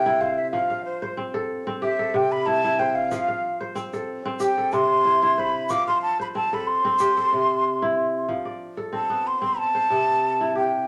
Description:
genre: west african traditional, West African string and xylophone music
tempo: 93 BPM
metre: 4/4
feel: swing 53% on 16ths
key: F lydian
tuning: A4 = 440 Hz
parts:
  - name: breathy hollow jazz flute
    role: melody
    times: 0.0-10.9 s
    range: C5 to D6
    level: -24 LUFS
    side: equal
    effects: none
  - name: kora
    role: arpeggios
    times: 0.0-10.9 s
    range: C3 to F5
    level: -28 LUFS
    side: equal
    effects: none
  - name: egg shaker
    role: percussion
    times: 3.1-7.2 s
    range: none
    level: -47 LUFS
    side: equal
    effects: none
room: moderate studio reverb, RT60 0.8 s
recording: none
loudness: -23 LUFS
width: mono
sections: 0.0-8.3 A section; 8.3-10.9 B section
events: flute solo 0.0-8.3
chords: 0.0 C; 0.5 F; 1.8 C; 3.1 F; 4.4 C; 5.7 F; 7.0 C; 8.3 F; 9.6 C

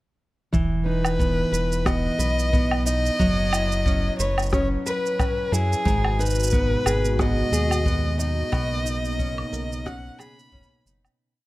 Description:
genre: folktronica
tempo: 90 BPM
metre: 4/4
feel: swing 56% on 16ths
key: B major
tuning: A4 = 440 Hz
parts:
  - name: nylon-string guitar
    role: arpeggios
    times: 0.5-11.5 s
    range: G#2 to B4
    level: -27 LUFS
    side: right 1 dB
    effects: low-pass filter
  - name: round analog bass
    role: bass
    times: 0.5-11.1 s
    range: E1 to F#2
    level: -25 LUFS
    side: equal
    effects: none
  - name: electronic shaker, woodblock and rim click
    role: drums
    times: 0.5-11.2 s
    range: none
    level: -29 LUFS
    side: right 1 dB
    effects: none
  - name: kick drum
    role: drums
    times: 0.5-10.7 s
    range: none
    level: -26 LUFS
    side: equal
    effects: none
  - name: dark violin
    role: melody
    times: 0.9-10.9 s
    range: G#4 to B5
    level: -26 LUFS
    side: left 1 dB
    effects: none
  - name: warm analog pad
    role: sustained chords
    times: 5.9-11.2 s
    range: B2 to F#4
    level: -32 LUFS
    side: equal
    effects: chorus
room: studio ambience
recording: none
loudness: -20 LUFS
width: side -18 dB against mid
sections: 0.5-11.2 groove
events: fade-out 7.6-11.2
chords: 0.5 E5; 3.2 F#7sus4; 5.9 G#m7; 8.5 Bmaj9

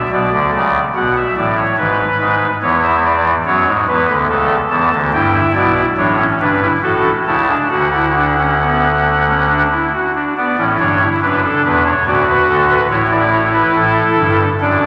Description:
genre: classical, baroque-style 3-part fugue for pipe organ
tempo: 71 BPM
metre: 3/4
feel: straight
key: B minor, D major from 5.1 s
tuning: A4 = 441 Hz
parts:
  - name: pipe organ, soft reed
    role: solo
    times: 0.0-14.9 s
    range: D1 to A5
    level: -14 LUFS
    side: equal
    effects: none
room: wet church reverb, RT60 3.5 s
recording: vinyl crackle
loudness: -14 LUFS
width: mono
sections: 0.0-10.4 A section; 10.4-14.9 B section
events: none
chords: 0.1 Bm; 1.8 G#m; 2.6 C#m/E; 4.3 A/C#; 5.1 Em7/G; 6.8 A; 7.7 D; 12.1 D6; 12.9 A7

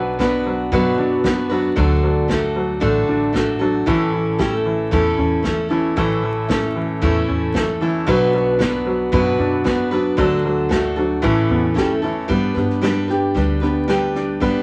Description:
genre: acoustic folk duo or small band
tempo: 114 BPM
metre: 4/4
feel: straight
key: A mixolydian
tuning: A4 = 440 Hz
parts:
  - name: picked steel-string acoustic guitar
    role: accompaniment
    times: 0.0-14.6 s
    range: A2 to B4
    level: -22 LUFS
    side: equal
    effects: none
  - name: clear upright piano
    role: arpeggios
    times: 0.0-14.6 s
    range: E3 to G4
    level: -23 LUFS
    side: equal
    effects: none
  - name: upright bass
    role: bass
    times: 0.0-14.6 s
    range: A1 to G2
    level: -28 LUFS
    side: equal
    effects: none
  - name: unplugged drum kit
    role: drums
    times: 0.2-14.5 s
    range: kick drum, snare drum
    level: -28 LUFS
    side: equal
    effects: none
room: moderate small room ambience, RT60 0.5 s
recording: vinyl crackle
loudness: -19 LUFS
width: mono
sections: 0.0-12.3 A section; 12.3-14.6 B section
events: none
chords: 0.0 Bm; 1.8 D; 3.9 A; 8.1 Bm; 10.2 D; 11.2 A; 12.3 G

